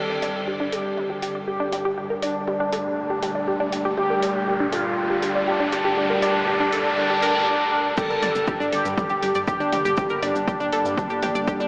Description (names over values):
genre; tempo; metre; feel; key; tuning
melodic techno; 120 BPM; 4/4; straight; G minor; A4 = 441 Hz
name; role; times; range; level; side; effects
analog synth brass; melody; 0.0-11.7 s; D4 to A4; -27 LUFS; equal; chorus, analog delay
deep dark ambient pad; sustained chords; 0.0-11.7 s; Bb2 to A5; -40 LUFS; equal; chorus, built-in reverb, sidechain pumping
brassy analog pad; stabs; 0.0-11.7 s; G2 to G3; -35 LUFS; equal; chorus, sidechain pumping, analog delay
riser; sound effects; 0.0-7.5 s; none; -33 LUFS; equal; none
analog pluck; arpeggios; 0.1-11.7 s; D4 to D5; -27 LUFS; equal; chorus, phaser, sidechain pumping, analog delay
deep house drum kit; drums; 0.2-11.3 s; crash cymbal, hi-hat, toms; -38 LUFS; equal; overdrive, sidechain pumping on toms, high-pass filter on toms, sidechain pumping on hats, high-pass filter on hats, sidechain pumping on cymbals, high-pass filter on cymbals
plucky analog bass; bass; 8.0-11.7 s; G1 to G2; -37 LUFS; equal; sidechain pumping
electronic kick drum; drums; 8.0-11.6 s; none; -30 LUFS; equal; overdrive
cabasa; percussion; 8.0-11.7 s; none; -47 LUFS; equal; none
room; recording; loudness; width
wet huge ambient reverb, RT60 7.4 s; dreamy mix soaked in reverb, AM radio sound; -23 LUFS; mono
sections
0.0-8.0 A section; 8.0-11.7 B section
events
build-up 0.0-8.0; riser 0.0-7.5; filter sweep on synth arpeggio sound 0.0-8.0; filter sweep on analog polysynth 0.0-8.0; filter sweep on analog synth pad 0.0-8.0; drop 8.0-11.7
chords
0.0 Gmadd9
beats
0.48 0.98 1.48 | 1.98 2.48 2.98 3.48 | 3.98 4.48 4.98 5.48 | 5.98 6.48 6.98 7.48 | 7.98 8.48 8.98 9.48 | 9.98 10.48 10.98 11.48